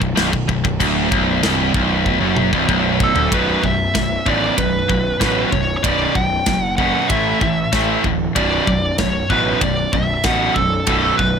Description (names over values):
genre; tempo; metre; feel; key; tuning
heavy metal; 95 BPM; 4/4; straight; B minor; A4 = 439 Hz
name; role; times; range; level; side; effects
distorted electric guitar; riff; 0.0-11.4 s; B1 to A3; -21 LUFS; right 12 dB; overdrive
scooped high-gain guitar; riff; 0.0-11.4 s; B1 to A3; -21 LUFS; left 13 dB; distortion
fuzz picked electric bass; bass; 0.0-11.4 s; B0 to A1; -24 LUFS; left 1 dB; overdrive
tight metal drum kit; drums; 0.0-11.3 s; crash cymbal, kick drum, ride cymbal, snare drum, toms; -23 LUFS; equal; none
nasal lead guitar with a parked wah; melody; 3.0-11.4 s; A4 to G5; -20 LUFS; right 2 dB; overdrive, tape echo
room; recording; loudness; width
little or no reverb; none; -15 LUFS; side -6 dB against mid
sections
0.0-3.3 A section; 3.3-11.4 B section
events
drum fill 2.1-3.3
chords
0.0 Bm; 3.3 B5; 7.1 A5; 8.4 Bm